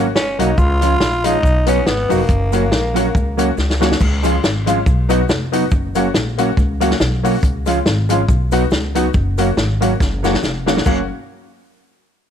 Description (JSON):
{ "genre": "ska", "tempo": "140 BPM", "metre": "4/4", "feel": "swing 56% on 8ths", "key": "F# major", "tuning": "A4 = 440 Hz", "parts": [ { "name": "mellow electric guitar", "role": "accompaniment", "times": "0.0-11.0 s", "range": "E#3 to F#4", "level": "-21 LUFS", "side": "right 12 dB", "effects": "none" }, { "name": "honky-tonk upright piano", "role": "stabs", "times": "0.0-11.0 s", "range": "G#3 to F#4", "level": "-21 LUFS", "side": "left 13 dB", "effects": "none" }, { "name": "upright bass", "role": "bass", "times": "0.0-11.1 s", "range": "E#1 to C#2", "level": "-19 LUFS", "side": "equal", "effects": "none" }, { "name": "growling tenor saxophone", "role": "melody", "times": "0.2-3.6 s", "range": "A#3 to E#4", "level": "-20 LUFS", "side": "equal", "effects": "none" }, { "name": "vintage drum kit", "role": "drums", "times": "0.2-11.0 s", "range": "crash cymbal, hi-hat, kick drum, snare drum", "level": "-19 LUFS", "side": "equal", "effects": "none" }, { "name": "cabasa", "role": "percussion", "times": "0.2-11.1 s", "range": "none", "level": "-39 LUFS", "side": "right 17 dB", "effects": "none" } ], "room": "small room ambience", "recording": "1960s-style stereo with parts hard left and right", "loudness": "-14 LUFS", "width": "side -9 dB against mid", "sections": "0.0-4.0 A section; 4.0-10.9 B section; 10.9-12.3 C section", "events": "drum fill 3.6-4.0, 10.0-10.9", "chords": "0.0 F#; 0.6 C#; 1.4 B; 2.3 F#; 4.0 C#; 4.9 B; 5.7 F#; 7.4 C#; 8.3 B; 9.1 F#", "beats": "0.15 | 0.57 1.00 1.43 1.86 | 2.29 2.72 3.14 3.57 | 4.00 4.43 4.86 5.29 | 5.71 6.14 6.57 7.00 | 7.43 7.85 8.28 8.71 | 9.14 9.57 10.00 10.43 | 10.85" }